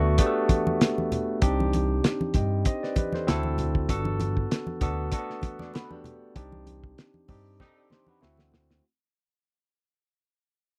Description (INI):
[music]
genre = lush 1970s-style soul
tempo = 97 BPM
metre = 4/4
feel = swing 54% on 16ths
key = G major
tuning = A4 = 441 Hz
[part]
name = barky tine electric piano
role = accompaniment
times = 0.0-8.9 s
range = A3 to G5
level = -31 LUFS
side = equal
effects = overdrive
[part]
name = overdriven fingered electric bass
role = bass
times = 0.0-8.8 s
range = G1 to G2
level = -30 LUFS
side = equal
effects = none
[part]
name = cloth-damped thuddy drum kit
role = drums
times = 0.2-8.8 s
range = hi-hat, kick drum, snare drum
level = -27 LUFS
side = equal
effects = none
[part]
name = congas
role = percussion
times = 0.2-8.7 s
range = none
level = -36 LUFS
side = equal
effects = none
[part]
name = electric guitar through a small old amp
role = riff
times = 5.6-8.8 s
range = C4 to Eb5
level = -54 LUFS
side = equal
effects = none
[part]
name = warm horn section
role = stabs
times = 7.6-7.8 s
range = G3 to Eb4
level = -67 LUFS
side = equal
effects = slapback echo
[sound]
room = little or no reverb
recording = dry, close 1970s-style studio recording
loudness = -26 LUFS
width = mono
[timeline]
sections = 0.0-8.8 A section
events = fade-out 0.0-8.8; band accent 6.4-8.8; drum fill 7.6-8.8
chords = 0.0 Gmaj7; 1.4 Cmadd9; 3.3 D7; 3.9 Gmaj7; 6.4 Cmadd9; 8.2 D7